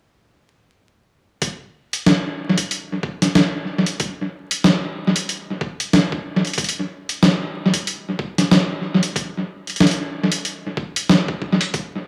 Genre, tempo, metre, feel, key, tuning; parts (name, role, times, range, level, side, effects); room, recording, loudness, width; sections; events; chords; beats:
glitch hop; 93 BPM; 4/4; swing 59% on 16ths
boom bap sampler-style drum kit; drums; 1.4-11.9 s; hi-hat, snare drum; -20 LUFS; equal; studio reverb, analog delay
electronic kick drum; drums; 1.4-11.9 s; -29 LUFS; equal; high-pass filter on kick, studio reverb
moderate spring reverb, RT60 2.7 s; echo-heavy mix, vinyl crackle, studio reverb; -20 LUFS; mono
1.4-12.1 A section
| 1.42 2.06 2.71 3.35 | 4.00 4.64 5.29 5.93 | 6.58 7.22 7.87 8.52 | 9.16 9.80 10.45 11.10 | 11.74